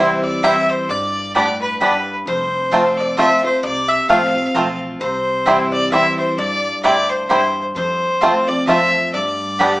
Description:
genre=bluegrass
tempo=131 BPM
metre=3/4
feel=swing 56% on 8ths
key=unclear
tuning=A4 = 439 Hz
part: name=clear fiddle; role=melody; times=0.0-9.8 s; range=B4 to F5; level=-19 LUFS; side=equal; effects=none
part: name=lap resonator guitar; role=second line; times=0.0-9.8 s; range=B4 to F5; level=-24 LUFS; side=left 1 dB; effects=none
part: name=picked steel-string acoustic guitar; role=accompaniment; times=0.0-9.8 s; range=F2 to G4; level=-23 LUFS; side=equal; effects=none
part: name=bluegrass banjo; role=arpeggios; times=0.0-9.7 s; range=G3 to F4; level=-18 LUFS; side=right 1 dB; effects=none
part: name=mandolin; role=stabs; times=0.0-9.7 s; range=B3 to A5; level=-20 LUFS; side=right 1 dB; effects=slapback echo
part: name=upright bass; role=bass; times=0.0-9.8 s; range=F1 to G2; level=-36 LUFS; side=equal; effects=none
room=wet large studio reverb, RT60 0.8 s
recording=band playing live in one room, small speaker sound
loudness=-14 LUFS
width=side -19 dB against mid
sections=0.0-9.8 A section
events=none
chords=0.0 C; 0.9 G; 2.3 F; 5.0 C; 7.8 F; 9.1 G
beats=0.43 | 0.89 1.35 1.81 | 2.27 2.72 3.18 | 3.64 4.09 4.55 | 5.01 5.47 5.92 | 6.38 6.84 7.30 | 7.76 8.22 8.68 | 9.14 9.60

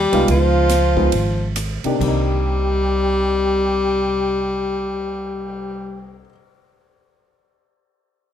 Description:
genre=jazz, small-group swing and bop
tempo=131-148 BPM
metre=4/4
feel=swing 64% on 8ths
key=C minor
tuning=A4 = 439 Hz
part: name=warm baritone saxophone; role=melody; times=0.0-6.2 s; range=F3 to G3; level=-20 LUFS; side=left 3 dB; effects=none
part: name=mellow tenor saxophone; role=second line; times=0.0-6.2 s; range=F4 to G4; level=-26 LUFS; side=right 5 dB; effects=none
part: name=upright bass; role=bass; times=0.0-6.2 s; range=Ab1 to Db2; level=-22 LUFS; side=right 1 dB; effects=none
part: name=dark upright piano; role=accompaniment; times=0.1-6.3 s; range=C3 to G4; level=-23 LUFS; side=equal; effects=none
part: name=swinging big-band drum kit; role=drums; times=0.1-5.6 s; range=crash cymbal, cymbal swell, hi-hat, kick drum, ride cymbal, rim click, snare drum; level=-30 LUFS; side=right 2 dB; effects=none
room=light reverb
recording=close, detailed microphones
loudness=-17 LUFS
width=side -9 dB against mid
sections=0.0-2.0 A section; 2.0-5.7 B section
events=slowing down 0.0-2.0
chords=0.3 Db9; 2.0 Cm9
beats=| 0.28 0.69 1.11 1.55 | 2.00 2.46 2.92 3.38 | 3.84 4.29 4.75 5.21

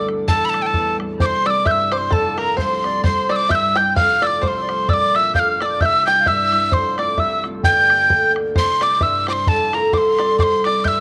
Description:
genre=celtic folk, Celtic polka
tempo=131 BPM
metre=2/4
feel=swing 57% on 8ths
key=unclear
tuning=A4 = 440 Hz
part: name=breathy mellow tin whistle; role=melody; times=0.0-11.0 s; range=G5 to G6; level=-19 LUFS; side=equal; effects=cassette tape
part: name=accordion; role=second line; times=0.0-8.3 s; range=A4 to G5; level=-27 LUFS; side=equal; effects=cassette tape
part: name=bluegrass banjo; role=second line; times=0.0-11.0 s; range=A4 to G5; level=-29 LUFS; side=equal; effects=cassette tape
part: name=concert harp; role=accompaniment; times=0.0-11.0 s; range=F1 to A4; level=-26 LUFS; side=equal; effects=cassette tape
part: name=bodhran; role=percussion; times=0.1-11.0 s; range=none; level=-23 LUFS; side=equal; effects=none
room=moderate small room reverb, RT60 0.5 s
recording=home recording on cassette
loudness=-17 LUFS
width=mono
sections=0.0-1.2 A section; 1.2-8.6 B section; 8.6-11.0 B section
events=none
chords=0.3 Am7; 1.2 C; 2.1 F; 3.0 C; 4.0 F; 4.9 Bb; 5.8 C; 6.7 F; 7.6 Gm; 8.6 C; 9.5 F; 10.4 C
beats=| 0.29 0.75 | 1.21 1.67 | 2.13 2.59 | 3.05 3.51 | 3.96 4.42 | 4.88 5.34 | 5.80 6.26 | 6.72 7.18 | 7.64 8.10 | 8.56 9.02 | 9.47 9.93 | 10.39 10.85

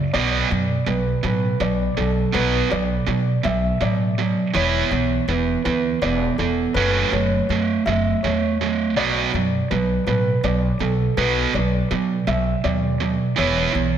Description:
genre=rock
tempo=54 BPM (dotted quarters)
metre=6/8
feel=straight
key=B minor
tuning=A4 = 440 Hz
part: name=felt-muted upright piano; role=arpeggios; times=0.0-14.0 s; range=A4 to E5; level=-25 LUFS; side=left 1 dB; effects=tape echo
part: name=distorted electric guitar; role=riff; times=0.0-14.0 s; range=F#2 to E4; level=-20 LUFS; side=right 5 dB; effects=distortion
part: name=upright bass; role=bass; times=0.0-14.0 s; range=E1 to B2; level=-24 LUFS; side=left 2 dB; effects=none
room=moderate lush hall reverb, RT60 2.2 s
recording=big arena sound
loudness=-18 LUFS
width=side -9 dB against mid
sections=0.1-14.0 A section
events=none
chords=0.1 Bm7; 4.6 E5; 6.8 F#m7; 9.0 Bm7; 13.4 E5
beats=| 0.14 1.24 | 2.34 3.45 | 4.55 5.66 | 6.76 7.86 | 8.96 10.07 | 11.17 12.27 | 13.38

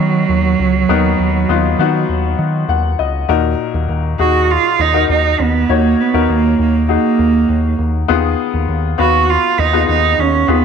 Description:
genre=piano-driven pop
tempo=100 BPM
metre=4/4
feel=straight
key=Eb minor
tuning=A4 = 440 Hz
part: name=warm cello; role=melody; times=0.0-10.6 s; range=F#3 to Gb4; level=-14 LUFS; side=right 7 dB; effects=none
part: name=clear upright piano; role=accompaniment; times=0.0-10.6 s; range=Bb2 to F#5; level=-18 LUFS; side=left 12 dB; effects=none
part: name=picked electric bass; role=bass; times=0.0-10.6 s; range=Db2 to D#3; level=-17 LUFS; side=left 1 dB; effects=none
room=wet spring reverb, RT60 1.3 s, small room ambience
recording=1960s-style stereo with parts hard left and right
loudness=-12 LUFS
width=side -6 dB against mid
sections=0.0-3.3 A section; 3.3-10.6 B section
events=upright piano fill 2.4-3.3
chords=0.0 Bmaj7; 3.3 Ebm; 8.1 Fdim/Eb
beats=0.29 | 0.89 1.49 2.09 2.69 | 3.29 3.89 4.49 5.09 | 5.69 6.29 6.89 7.49 | 8.09 8.69 9.29 9.89 | 10.49

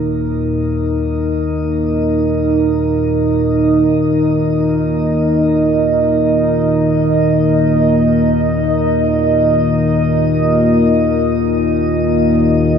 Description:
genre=dark ambient drone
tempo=free time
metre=none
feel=none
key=unclear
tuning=A4 = 440 Hz
part: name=dark analog pad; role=sustained chords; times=0.0-12.8 s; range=Eb4 to Eb5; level=-15 LUFS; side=right 1 dB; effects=wide subtle chorus, shimmer reverb
part: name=analog drone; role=drone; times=0.0-12.8 s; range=Eb2 to Bb2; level=-16 LUFS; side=left 1 dB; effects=chorus
room=wet cathedral reverb, RT60 6.7 s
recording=nothing above 7.5 kHz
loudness=-12 LUFS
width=side -7 dB against mid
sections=0.0-12.8 A section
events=none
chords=0.0 Eb5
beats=free time

